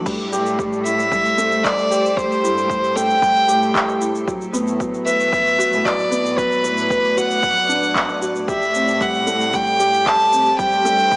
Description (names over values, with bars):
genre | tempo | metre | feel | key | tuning
piano and strings electronica | 114 BPM | 4/4 | straight | A dorian | A4 = 441 Hz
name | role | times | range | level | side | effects
granular cloud pad | sustained chords | 0.0-11.2 s | A2 to D5 | -29 LUFS | equal | built-in reverb
felt-muted upright piano | riff | 0.0-11.2 s | F#3 to B4 | -22 LUFS | equal | none
dark studio cello section | bass | 0.1-11.2 s | G2 to A2 | -28 LUFS | equal | tube saturation, sidechain pumping
deep house drum kit | drums | 0.1-11.2 s | crash cymbal, handclaps, shaker | -25 LUFS | equal | none
electronic kick drum | drums | 0.1-11.2 s | none | -28 LUFS | equal | none
warm violin | melody | 0.9-11.2 s | B4 to A5 | -17 LUFS | equal | none
room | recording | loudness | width
moderate recital hall reverb, RT60 1.6 s | small speaker sound | -15 LUFS | side -25 dB against mid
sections
0.0-11.2 A section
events
none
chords
0.1 Am7; 4.3 Bm/A; 8.5 Am7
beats
| 0.06 0.59 1.12 1.64 | 2.17 2.69 3.22 3.75 | 4.27 4.80 5.33 5.85 | 6.38 6.91 7.43 7.96 | 8.48 9.01 9.54 10.06 | 10.59 11.12